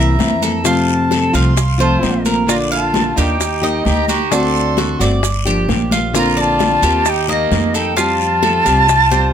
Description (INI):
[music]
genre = latin, Cuban son and guajira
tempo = 131 BPM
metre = 4/4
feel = straight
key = unclear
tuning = A4 = 441 Hz
[part]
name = breathy jazz flute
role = melody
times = 0.0-9.3 s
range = Eb5 to C6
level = -18 LUFS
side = left 1 dB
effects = plate reverb
[part]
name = nylon-string guitar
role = accompaniment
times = 0.0-9.3 s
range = C3 to G4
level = -19 LUFS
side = left 2 dB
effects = none
[part]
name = Cuban tres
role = arpeggios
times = 0.0-9.3 s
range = D4 to F5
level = -21 LUFS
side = right 2 dB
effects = none
[part]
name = upright bass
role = bass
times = 0.0-9.3 s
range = G1 to F2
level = -19 LUFS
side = right 1 dB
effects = none
[part]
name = bongos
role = percussion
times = 0.2-9.2 s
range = none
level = -25 LUFS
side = left 8 dB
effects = none
[part]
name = congas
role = percussion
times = 0.2-9.3 s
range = none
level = -23 LUFS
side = equal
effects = none
[part]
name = guiro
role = percussion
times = 0.2-9.3 s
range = none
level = -28 LUFS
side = left 7 dB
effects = none
[part]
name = maracas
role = percussion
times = 0.2-9.3 s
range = none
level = -26 LUFS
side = right 10 dB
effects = none
[part]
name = growling trumpet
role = second line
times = 1.8-9.3 s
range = Bb3 to A4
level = -24 LUFS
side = right 9 dB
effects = none
[sound]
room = light reverb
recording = close, detailed microphones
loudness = -12 LUFS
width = side -8 dB against mid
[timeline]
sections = 0.0-9.3 A section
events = drum fill 9.1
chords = 0.0 C7; 0.7 F; 2.5 Bb; 3.4 Eb; 4.3 D7; 5.2 Gm7; 6.1 Bbadd9; 7.1 Eb; 8.0 Fadd9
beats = 0.20 | 0.65 1.11 1.57 2.03 | 2.48 2.94 3.40 3.86 | 4.32 4.77 5.23 5.69 | 6.15 6.60 7.06 7.52 | 7.97 8.43 8.89